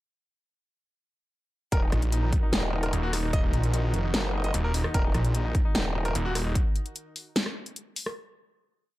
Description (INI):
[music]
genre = heavy wobble dubstep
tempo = 149 BPM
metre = 4/4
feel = half-time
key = Eb minor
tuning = A4 = 440 Hz
[part]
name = bright concert grand piano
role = melody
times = 1.7-6.5 s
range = Eb4 to Eb5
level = -34 LUFS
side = left 1 dB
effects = tape echo
[part]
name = lush unison pad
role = sustained chords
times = 1.7-6.5 s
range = Eb3 to Bb4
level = -38 LUFS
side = equal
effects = chorus, sidechain pumping
[part]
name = growl bass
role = bass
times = 1.7-6.1 s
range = Eb1 to Gb1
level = -28 LUFS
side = equal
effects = chorus, overdrive
[part]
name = dubstep drum kit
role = drums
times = 1.7-8.1 s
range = hi-hat, rim click, snare drum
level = -30 LUFS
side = equal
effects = none
[part]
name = electronic kick drum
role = drums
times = 1.7-6.6 s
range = none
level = -25 LUFS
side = equal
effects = none
[part]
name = snarling distorted saw bass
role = bass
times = 1.9-6.5 s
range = Eb1 to Bb1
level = -26 LUFS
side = equal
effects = distortion, overdrive
[sound]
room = little or no reverb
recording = dark, warm production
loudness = -24 LUFS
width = side -17 dB against mid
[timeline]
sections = 1.7-8.2 drop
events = drop 1.7-8.2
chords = 1.7 Ebm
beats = | 1.72 2.12 2.53 2.93 | 3.33 3.73 4.14 4.54 | 4.94 5.35 5.75 6.15 | 6.55 6.96 7.36 7.76